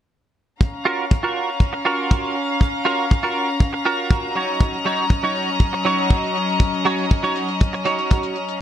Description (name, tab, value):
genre	nu-disco, nu disco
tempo	120 BPM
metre	4/4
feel	straight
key	F# major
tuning	A4 = 444 Hz
part	warm studio string section	sustained chords	0.6-8.6 s	F#3 to A#5	-23 LUFS	left 2 dB	sidechain pumping
part	hi-hat	drums	0.6-8.6 s	none	-42 LUFS	left 6 dB	none
part	kick drum	drums	0.6-8.2 s	none	-16 LUFS	equal	studio ambience
part	direct-recorded clean electric guitar	riff	0.9-8.4 s	F#3 to C#5	-23 LUFS	right 3 dB	analog chorus, vintage 12-bit sampler grit, low-pass filter, digital delay
room	light reverb, small room ambience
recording	bright 1980s-style digital production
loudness	-18 LUFS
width	side -10 dB against mid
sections	0.6-8.6 A section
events	none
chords	0.6 F#maj7; 4.4 D#m7/F#